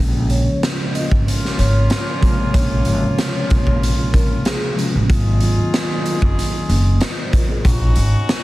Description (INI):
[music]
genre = hip hop, boom-bap hip-hop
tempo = 94 BPM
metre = 4/4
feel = swing 55% on 16ths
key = Bb minor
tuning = A4 = 441 Hz
[part]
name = mellow tine electric piano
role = accompaniment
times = 0.0-7.7 s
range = C3 to Eb5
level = -22 LUFS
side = equal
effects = slow stereo tremolo, cassette tape, high-pass filter, low-pass filter
[part]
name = upright bass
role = bass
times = 0.0-8.1 s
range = Gb1 to Bb1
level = -17 LUFS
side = equal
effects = none
[part]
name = vibraphone with soft mallets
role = melody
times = 0.3-4.7 s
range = Ab4 to Eb5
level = -28 LUFS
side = left 1 dB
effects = high-pass filter, low-pass filter, digital delay
[part]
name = raw garage drum kit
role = drums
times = 0.3-8.4 s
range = hi-hat, kick drum, snare drum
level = -18 LUFS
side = equal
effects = none
[part]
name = clear horn section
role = stabs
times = 1.3-8.4 s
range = Bb3 to Ab4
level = -27 LUFS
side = left 1 dB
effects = high-pass filter, low-pass filter, digital delay
[sound]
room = small room ambience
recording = dense, heavily limited modern master, vinyl crackle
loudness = -15 LUFS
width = side -18 dB against mid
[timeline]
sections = 0.0-8.4 A section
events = none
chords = 0.0 Bbm7; 5.1 Ab13; 7.6 Gb6